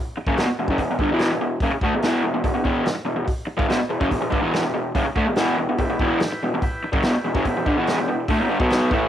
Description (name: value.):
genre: garage rock duo or trio.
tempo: 144 BPM.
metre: 4/4.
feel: straight.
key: E minor.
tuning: A4 = 440 Hz.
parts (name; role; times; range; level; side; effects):
raw garage guitar; riff; 0.2-9.1 s; E2 to B3; -20 LUFS; equal; overdrive, cassette tape.
vintage drum kit; drums; 0.3-9.0 s; hi-hat, kick drum, snare drum; -26 LUFS; equal; cassette tape.
combo organ; sustained chords; 5.8-9.0 s; E4 to B4; -33 LUFS; right 1 dB; spring reverb, cassette tape.
room: studio reverb.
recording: home recording on cassette.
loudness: -19 LUFS.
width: side -10 dB against mid.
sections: 0.0-9.1 A section.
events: none.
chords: 0.0 Em.